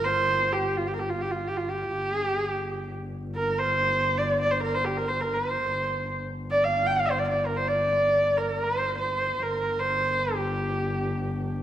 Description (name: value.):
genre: mongolian traditional, Mongolian folk.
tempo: 128 BPM.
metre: 4/4.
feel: straight.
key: G yu mode.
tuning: A4 = 438 Hz.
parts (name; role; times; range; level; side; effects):
rich horsehead fiddle; melody; 0.0-11.5 s; F4 to G5; -24 LUFS; right 1 dB; none.
dark double bass; drone; 0.0-11.6 s; G1; -32 LUFS; left 1 dB; none.
room: wet recital hall reverb, RT60 1.7 s.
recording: none.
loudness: -24 LUFS.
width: side -11 dB against mid.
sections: 0.0-11.6 A section.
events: none.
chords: none.